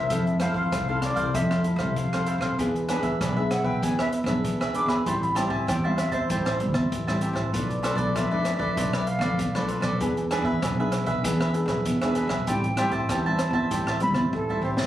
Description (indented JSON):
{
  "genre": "samba and choro",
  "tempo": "97 BPM",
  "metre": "4/4",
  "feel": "straight",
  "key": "A minor",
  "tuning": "A4 = 440 Hz",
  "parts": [
    { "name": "mellow silver concert flute", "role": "melody", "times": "0.0-14.7 s", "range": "A4 to D6", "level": "-29 LUFS", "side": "equal", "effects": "none" },
    { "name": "cavaquinho", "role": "accompaniment", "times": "0.0-14.9 s", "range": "D4 to A5", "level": "-29 LUFS", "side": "right 1 dB", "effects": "none" },
    { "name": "nylon-string guitar", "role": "accompaniment", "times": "0.0-14.9 s", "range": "A2 to A4", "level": "-30 LUFS", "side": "left 2 dB", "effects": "none" },
    { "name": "upright bass", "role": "bass", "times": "0.0-14.9 s", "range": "A1 to F2", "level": "-27 LUFS", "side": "right 1 dB", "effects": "none" },
    { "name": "open jazz drum kit", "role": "drums", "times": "0.1-14.9 s", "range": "hi-hat, kick drum, rim click, snare drum", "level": "-32 LUFS", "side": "equal", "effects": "none" }
  ],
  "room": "moderate small room reverb, RT60 0.5 s",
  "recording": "recorded on a phone in the room, club reverb, compression",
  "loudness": "-23 LUFS",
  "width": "side -12 dB against mid",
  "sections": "0.0-14.9 A section",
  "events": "flute solo 0.0-14.9; drum fill 14.3-14.9",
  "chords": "0.1 Fmaj7; 2.6 E7; 5.1 Am7; 7.5 Bm7b5; 10.0 E7; 12.5 Am7"
}